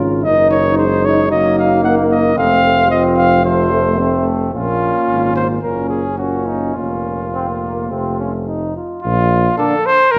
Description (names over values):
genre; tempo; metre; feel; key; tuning
classical, brass quintet; 103-114 BPM; 4/4; rubato; unclear; A4 = 442 Hz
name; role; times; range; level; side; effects
mellow flugelhorn; second line; 0.0-9.7 s; A3 to F4; -24 LUFS; equal; none
mellow trombone; accompaniment; 0.0-9.8 s; Bb2 to C4; -23 LUFS; equal; none
warm French horn; accompaniment; 0.0-9.8 s; A3 to Eb4; -24 LUFS; equal; none
warm tuba; bass; 0.0-10.2 s; F1 to Bb1; -23 LUFS; equal; none
mellow trumpet; melody; 0.2-10.2 s; Eb4 to Gb5; -19 LUFS; equal; none
room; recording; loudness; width
wet recital hall reverb, RT60 1.4 s; none; -15 LUFS; mono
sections
0.0-9.0 A section; 9.0-10.2 A section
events
none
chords
0.2 Ebm/Gb; 1.3 Gb6; 2.4 F; 4.5 Bbm; 5.6 Gb; 6.8 Bbm/F; 7.9 F; 9.0 Bb